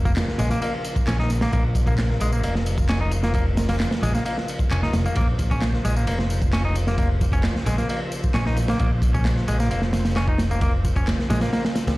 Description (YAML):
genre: breakbeat, breaks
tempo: 132 BPM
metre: 4/4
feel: straight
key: Bb minor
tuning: A4 = 441 Hz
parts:
  - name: percussive tonewheel organ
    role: sustained chords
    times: 0.0-12.0 s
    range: Db3 to C5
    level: -31 LUFS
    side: equal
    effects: overdrive, chorus vibrato, slow rotary speaker, sidechain pumping
  - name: modern bright picked electric bass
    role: bass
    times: 0.0-12.0 s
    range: F1 to Db2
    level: -23 LUFS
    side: equal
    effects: none
  - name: semi-hollow electric guitar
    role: riff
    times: 0.1-11.6 s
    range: Ab3 to Eb4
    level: -29 LUFS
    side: equal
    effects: dub echo
  - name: crunchy breakbeat drum kit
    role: drums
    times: 0.1-12.0 s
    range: kick drum, ride cymbal, snare drum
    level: -23 LUFS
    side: equal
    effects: none
  - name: electronic tambourine and handclaps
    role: drums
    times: 0.1-12.0 s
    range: none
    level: -37 LUFS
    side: left 1 dB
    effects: none
room: light reverb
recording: played on a big sound system in a bare room, large studio reverb, vinyl crackle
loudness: -19 LUFS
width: side -20 dB against mid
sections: 0.0-12.0 A section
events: none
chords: 0.0 Bbm